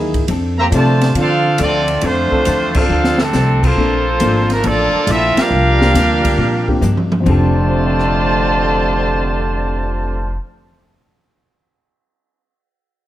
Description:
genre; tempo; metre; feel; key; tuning
jazz, big band swing; 138 BPM; 4/4; swing 68% on 8ths; F major; A4 = 440 Hz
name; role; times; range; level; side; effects
vintage hollow-body jazz guitar; accompaniment; 0.0-10.8 s; Gb2 to A4; -23 LUFS; left 2 dB; none
warm trombone section; sustained chords; 0.0-2.9 s; F3 to A4; -24 LUFS; left 1 dB; none
upright bass; bass; 0.0-10.4 s; F1 to D3; -18 LUFS; equal; none
open jazz drum kit; drums; 0.1-8.1 s; crash cymbal, hi-hat, kick drum, ride cymbal, rim click, snare drum, toms; -21 LUFS; equal; none
clear trumpet section; melody; 0.6-10.4 s; A3 to Bb5; -17 LUFS; equal; none
warm trombone section; second line; 0.6-10.4 s; F2 to A4; -20 LUFS; right 2 dB; none
dark grand piano; accompaniment; 3.8-11.4 s; F2 to C7; -22 LUFS; left 2 dB; none
room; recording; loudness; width
light reverb; close, detailed microphones; -12 LUFS; side -13 dB against mid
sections
0.0-3.8 A section; 3.8-7.3 B section; 7.3-10.7 C section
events
band accent 2.7, 5.3; drum fill 2.9-3.3, 6.8-7.3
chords
0.3 F6; 3.8 Bbmaj7; 5.5 C9sus4; 7.3 F6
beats
| 0.29 0.72 1.16 1.59 | 2.03 2.47 2.90 3.34 | 3.77 4.21 4.64 5.08 | 5.52 5.95 6.39 6.82 | 7.26 7.69 8.13 8.56 | 9.00 9.43 9.87 10.30

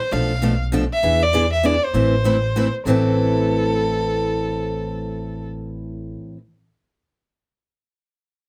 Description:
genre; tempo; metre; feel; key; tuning
acoustic string swing (jazz manouche); 197 BPM; 3/4; swing 59% on 8ths; A minor; A4 = 440 Hz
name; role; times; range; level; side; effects
warm violin; melody; 0.0-5.5 s; A4 to F5; -24 LUFS; equal; none
picked steel-string acoustic guitar; accompaniment; 0.1-6.4 s; A2 to B4; -24 LUFS; equal; none
upright bass; bass; 0.1-6.1 s; A1 to E2; -26 LUFS; equal; none
room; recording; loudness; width
light reverb; none; -20 LUFS; mono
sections
0.0-2.9 A section; 2.9-4.7 B section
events
none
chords
0.1 Bm7b5; 1.0 E7; 1.9 Amadd9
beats
| 0.12 0.43 0.73 | 1.03 1.34 1.65 | 1.95 2.25 2.56 | 2.86 3.17 3.47 | 3.78 4.08 4.39

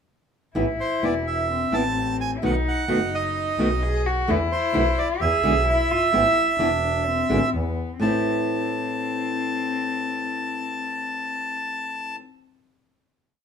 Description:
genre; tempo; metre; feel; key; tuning
tango; 129 BPM; 4/4; rubato; A harmonic minor; A4 = 440 Hz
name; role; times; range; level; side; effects
warm cello; second line; 0.6-12.1 s; B3 to G#4; -27 LUFS; left 4 dB; none
flamenco guitar; accompaniment; 0.6-12.2 s; A2 to F#4; -26 LUFS; equal; none
warm double bass; bass; 0.6-8.2 s; E1 to E2; -28 LUFS; equal; none
bandoneon; melody; 0.8-12.2 s; C5 to A5; -24 LUFS; right 3 dB; none
room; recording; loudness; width
wet studio reverb, RT60 0.8 s; minimal, uncompressed stereo recording; -21 LUFS; side -7 dB against mid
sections
0.6-8.0 A section; 8.0-11.7 final chord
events
none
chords
0.6 Amadd9; 2.4 B7; 4.3 E7sus4; 5.2 E; 6.1 Amadd9; 7.5 E5; 8.0 Am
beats
| 0.56 1.03 1.50 1.96 | 2.43 2.89 3.36 3.82 | 4.28 4.74 5.21 5.67 | 6.13 6.60 7.06 7.53 | 8.01 8.47 8.94 9.40 | 9.87 10.33 10.79 11.26

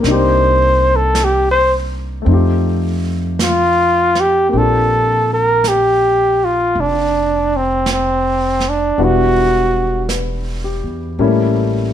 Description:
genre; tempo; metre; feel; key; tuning
jazz ballad; 54 BPM; 4/4; swing 68% on 8ths; Bb major; A4 = 440 Hz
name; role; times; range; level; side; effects
warm grand piano; accompaniment; 0.0-11.9 s; G3 to B4; -20 LUFS; left 5 dB; none
upright bass; bass; 0.0-11.9 s; E1 to F2; -19 LUFS; right 1 dB; none
jazz brush drum kit; drums; 0.0-11.9 s; brushed snare drum, hi-hat, snare drum; -25 LUFS; right 4 dB; none
dark trumpet; melody; 0.1-10.1 s; C4 to C5; -13 LUFS; equal; none
room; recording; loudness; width
light reverb; none; -12 LUFS; side -10 dB against mid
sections
0.0-4.5 A section; 4.5-11.9 B section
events
trumpet solo 0.0-4.5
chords
0.0 Cm7; 2.3 F7; 4.5 Bb69; 9.0 Em9; 11.2 A7b9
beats
| 0.05 1.15 2.27 3.40 | 4.53 5.65 6.76 7.88 | 8.98 10.09 11.19

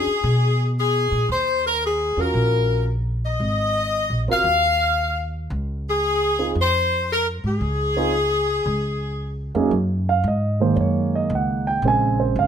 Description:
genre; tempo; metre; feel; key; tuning
jazz, big band swing; 114 BPM; 4/4; swing 67% on 8ths; Db major; A4 = 440 Hz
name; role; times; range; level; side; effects
bright saxophone section; melody; 0.0-9.5 s; Ab4 to F5; -20 LUFS; left 2 dB; none
dark grand piano; accompaniment; 0.0-12.5 s; Gb2 to G#5; -21 LUFS; right 4 dB; none
upright bass; bass; 0.0-12.5 s; Gb1 to B2; -23 LUFS; equal; none
room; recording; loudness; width
light reverb; none; -19 LUFS; side -8 dB against mid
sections
0.0-9.7 A section; 9.7-12.5 B section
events
grand piano solo 9.7-12.5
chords
0.0 E (rootless); 1.3 Ebm9; 3.4 Ab7sus2; 5.5 Db; 8.7 Dbadd9; 9.7 F#69; 11.8 A#m9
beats
0.24 0.76 | 1.29 1.82 2.35 2.87 | 3.40 3.92 4.45 4.98 | 5.50 6.03 6.56 7.08 | 7.61 8.14 8.67 9.19 | 9.72 10.25 10.77 11.30 | 11.83 12.36

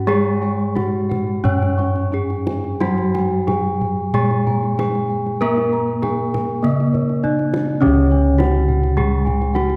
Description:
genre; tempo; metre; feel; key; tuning
Javanese gamelan; 88-104 BPM; 4/4; straight; C# pelog barang; A4 = 441 Hz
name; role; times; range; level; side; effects
gamelan-type bronze metallophone; melody; 0.0-9.8 s; A#3+20c to C#5; -24 LUFS; equal; none
gamelan-type bronze metallophone; accompaniment; 0.0-9.8 s; C#3 to C#4; -25 LUFS; equal; none
gamelan-type bronze metallophone; arpeggios; 0.0-9.8 s; A#4+20c to C#6; -31 LUFS; equal; none
gamelan-type bossed gongs; bass; 0.0-9.8 s; C#2 to A#4+20c; -23 LUFS; equal; none
gamelan-type bossed gongs; arpeggios; 0.1-9.8 s; A#4+20c to C#6; -32 LUFS; equal; none
kendang; percussion; 0.1-9.8 s; none; -30 LUFS; equal; none
room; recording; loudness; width
moderate scoring stage reverb, RT60 1.6 s; dark, warm production; -19 LUFS; mono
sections
0.0-7.8 A section; 7.8-9.8 B section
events
none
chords
none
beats
| 0.08 0.76 1.44 2.12 | 2.80 3.48 4.14 4.78 | 5.41 6.03 6.64 7.24 | 7.82 8.40 8.97 9.55

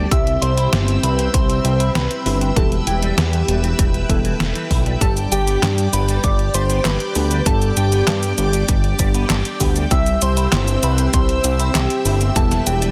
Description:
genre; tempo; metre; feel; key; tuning
synthwave; 98 BPM; 4/4; straight; G major; A4 = 440 Hz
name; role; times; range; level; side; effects
string machine, full ensemble; sustained chords; 0.0-12.9 s; C4 to E6; -29 LUFS; equal; ensemble chorus, sidechain pumping
semi-hollow electric guitar; riff; 0.0-12.9 s; E3 to G4; -33 LUFS; equal; ensemble chorus, digital delay
mellow FM electric piano; stabs; 0.0-12.9 s; G3 to A4; -29 LUFS; equal; chorus
fat analog bass; bass; 0.0-12.9 s; E1 to G2; -21 LUFS; equal; tube saturation
warm velvety synth lead; melody; 0.1-12.9 s; G4 to E5; -27 LUFS; equal; chorus, tape echo
soft synth bell; second line; 0.1-12.9 s; G5 to E6; -31 LUFS; equal; chorus, vintage 12-bit sampler grit, tape echo
detuned 8-bit digital drum machine; drums; 0.1-12.9 s; handclaps, hi-hat, shaker, snare drum; -25 LUFS; equal; overdrive
electronic kick drum; drums; 0.1-12.5 s; none; -21 LUFS; equal; none
room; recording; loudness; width
light reverb; dense, heavily limited modern master; -18 LUFS; mono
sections
0.0-12.9 A section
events
none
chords
0.1 C; 2.6 Em; 5.0 G; 9.9 C; 12.4 Em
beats
| 0.12 0.73 1.34 1.95 | 2.56 3.18 3.79 4.40 | 5.01 5.63 6.24 6.85 | 7.46 8.07 8.69 9.30 | 9.91 10.52 11.14 11.75 | 12.36

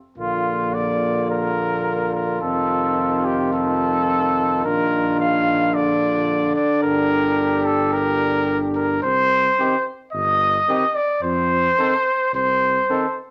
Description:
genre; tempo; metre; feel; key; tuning
classical, brass quintet; 108 BPM; 4/4; rubato; Bb major; A4 = 440 Hz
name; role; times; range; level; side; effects
bright trumpet; melody; 0.2-13.2 s; F4 to F5; -22 LUFS; equal; none
warm trumpet; second line; 0.2-13.1 s; F4 to A4; -30 LUFS; equal; none
bright trombone; accompaniment; 0.2-13.1 s; D3 to Eb3; -30 LUFS; equal; none
dark French horn; accompaniment; 0.2-13.1 s; Bb3 to D4; -26 LUFS; equal; none
warm bass trombone; bass; 0.2-12.8 s; F1 to F2; -31 LUFS; equal; none
room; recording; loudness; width
moderate studio reverb, RT60 0.7 s; none; -20 LUFS; mono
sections
0.2-13.3 A section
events
none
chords
0.2 Bb; 2.4 F7; 4.7 Bb; 6.8 Gm; 9.0 Cm; 11.2 F7(no3)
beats
| 0.18 0.75 1.31 1.87 | 2.43 2.98 3.54 4.10 | 4.66 5.21 5.75 6.29 | 6.83 7.38 7.93 8.48 | 9.03 9.58 10.13 10.68 | 11.23 11.78 12.34 12.90

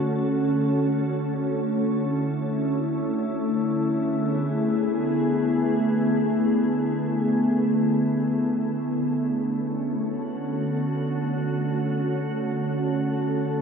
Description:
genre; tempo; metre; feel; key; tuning
ambient; free time; none; none; D lydian; A4 = 440 Hz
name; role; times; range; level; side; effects
glassy FM pad; solo; 0.0-13.6 s; D3 to A4; -22 LUFS; equal; ensemble chorus, built-in reverb, ping-pong delay
room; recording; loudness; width
wet huge ambient reverb, RT60 7.7 s; in a vast, echoing space; -22 LUFS; side -6 dB against mid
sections
0.0-9.1 A section; 9.1-13.6 A section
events
none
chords
0.0 Dmaj7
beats
free time

